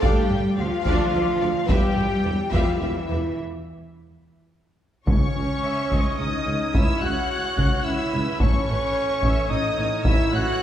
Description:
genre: cinematic, epic orchestral film score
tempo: 108 BPM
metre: 3/4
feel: straight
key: C# minor from 5.1 s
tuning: A4 = 440 Hz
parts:
  - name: rich symphonic violin section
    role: melody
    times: 0.0-10.6 s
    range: E5 to F#6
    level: -31 LUFS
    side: left 3 dB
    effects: none
  - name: warm symphonic violin section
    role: second line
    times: 0.0-10.6 s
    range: B4 to F#5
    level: -33 LUFS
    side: left 2 dB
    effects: none
  - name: rich symphonic viola section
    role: accompaniment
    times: 0.0-10.6 s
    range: G3 to E5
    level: -33 LUFS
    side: right 1 dB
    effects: none
  - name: warm French horn section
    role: sustained chords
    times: 0.0-10.6 s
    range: C#4 to G4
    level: -28 LUFS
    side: left 1 dB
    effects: none
  - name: warm symphonic cello section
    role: bass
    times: 0.0-10.4 s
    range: A2 to G3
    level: -30 LUFS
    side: equal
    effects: none
  - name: warm symphonic double bass section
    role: bass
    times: 0.0-10.4 s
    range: A1 to E2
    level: -30 LUFS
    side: right 1 dB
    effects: none
  - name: warm tuba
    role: bass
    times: 0.0-10.4 s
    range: E1 to D2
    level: -31 LUFS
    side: right 1 dB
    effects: none
  - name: solo taiko drums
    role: drums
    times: 0.0-10.6 s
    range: none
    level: -24 LUFS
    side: equal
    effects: none
  - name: mellow woodwind section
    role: sustained chords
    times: 5.1-10.6 s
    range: E3 to C#5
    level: -35 LUFS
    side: left 1 dB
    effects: none
  - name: mellow trumpet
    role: stabs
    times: 5.1-10.6 s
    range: C#4 to F#4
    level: -28 LUFS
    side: right 2 dB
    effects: none
  - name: timpani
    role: percussion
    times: 5.1-5.9 s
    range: C#3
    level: -29 LUFS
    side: equal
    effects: none
room: wet scoring stage reverb, RT60 1.8 s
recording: heard from further back in the room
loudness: -20 LUFS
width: side -10 dB against mid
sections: 0.0-5.1 A section; 5.1-10.6 B section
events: break 3.4-5.1; drum fill 4.2-5.1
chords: 0.0 Dm; 1.7 Em; 3.4 N.C.; 5.1 C#m; 8.4 A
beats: | 0.03 0.59 1.14 | 1.70 2.25 2.81 | 3.38 3.94 4.51 | 5.07 5.63 6.19 | 6.74 7.30 7.85 | 8.40 8.96 9.51 | 10.06 10.61

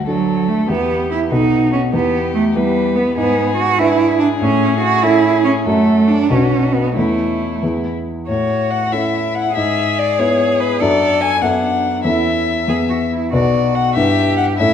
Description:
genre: quick classical-period movement for piano trio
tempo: 95 BPM (dotted quarters)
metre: 6/8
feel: rubato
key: A major from 3.2 s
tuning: A4 = 440 Hz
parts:
  - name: dark violin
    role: melody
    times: 0.0-14.7 s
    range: E4 to G#5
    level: -20 LUFS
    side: left 6 dB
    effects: none
  - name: warm grand piano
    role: accompaniment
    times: 0.0-14.7 s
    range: B1 to B4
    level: -18 LUFS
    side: left 2 dB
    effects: none
  - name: rich cello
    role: second line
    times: 0.1-14.7 s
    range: F#3 to A4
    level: -17 LUFS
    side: right 4 dB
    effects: none
room: wet recital hall reverb, RT60 1.3 s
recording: none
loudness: -13 LUFS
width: side -8 dB against mid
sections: 0.0-8.3 A section; 8.3-14.7 B section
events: none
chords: 0.0 D; 0.7 Em; 1.3 B7; 1.9 Em; 3.2 E7/G#; 4.4 A; 5.7 F#m; 6.3 Bm; 7.0 A/E; 7.6 E; 8.3 A; 9.6 E/G#; 10.8 D/F#; 11.4 Bm7/F#; 12.0 A/E; 12.7 E; 13.3 Bm; 14.0 Em7/G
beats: 0.07 | 0.69 1.31 | 1.93 2.55 | 3.17 3.79 | 4.41 5.03 | 5.66 6.30 | 6.96 7.62 | 8.28 8.92 | 9.55 10.18 | 10.80 11.41 | 12.04 12.68 | 13.32 13.96 | 14.59

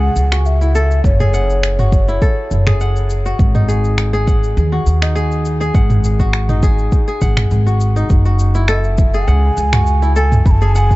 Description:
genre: organic downtempo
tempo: 102 BPM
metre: 4/4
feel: swing 54% on 16ths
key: F# dorian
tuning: A4 = 440 Hz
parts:
  - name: breathy mellow ney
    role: melody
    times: 0.0-2.8, 8.7-11.0 s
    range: C#5 to B5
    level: -22 LUFS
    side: right 1 dB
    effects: ping-pong delay
  - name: kora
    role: arpeggios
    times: 0.0-11.0 s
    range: D#4 to F#5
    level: -21 LUFS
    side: left 2 dB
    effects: ping-pong delay
  - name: upright bass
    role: bass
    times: 0.0-11.0 s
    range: F#1 to D#2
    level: -14 LUFS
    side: equal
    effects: none
  - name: deep house drum kit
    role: drums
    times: 0.2-11.0 s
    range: cabasa, finger snaps, toms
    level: -19 LUFS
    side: right 1 dB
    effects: none
  - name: electronic kick drum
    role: drums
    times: 1.0-11.0 s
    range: none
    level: -13 LUFS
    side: equal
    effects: none
room: small room ambience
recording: dark, warm production, nothing above 7.9 kHz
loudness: -12 LUFS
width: side -19 dB against mid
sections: 0.0-8.1 A section; 8.1-11.0 B section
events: none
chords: 0.0 F#m7; 3.4 G#5; 8.1 F#m7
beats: 0.45 | 1.04 1.63 2.22 2.81 | 3.39 3.98 4.57 5.16 | 5.75 6.33 6.92 7.51 | 8.10 8.69 9.28 9.87 | 10.45

